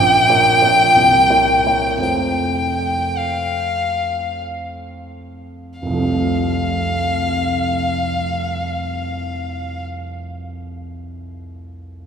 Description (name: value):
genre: classical, romantic duo for violin and grand piano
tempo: 42-66 BPM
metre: 3/4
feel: rubato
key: F major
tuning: A4 = 440 Hz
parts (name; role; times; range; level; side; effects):
- rich violin; melody; 0.0-9.8 s; F5 to G5; -16 LUFS; left 1 dB; none
- warm baby grand piano; accompaniment; 0.0-12.1 s; F1 to Db5; -22 LUFS; right 1 dB; none
room: wet church reverb, RT60 3.6 s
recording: minimal, uncompressed stereo recording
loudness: -15 LUFS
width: side -7 dB against mid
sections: 0.0-5.8 A section; 5.8-9.9 B section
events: slowing down 0.0-5.8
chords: 0.0 Bbm; 1.0 C7b9; 2.0 F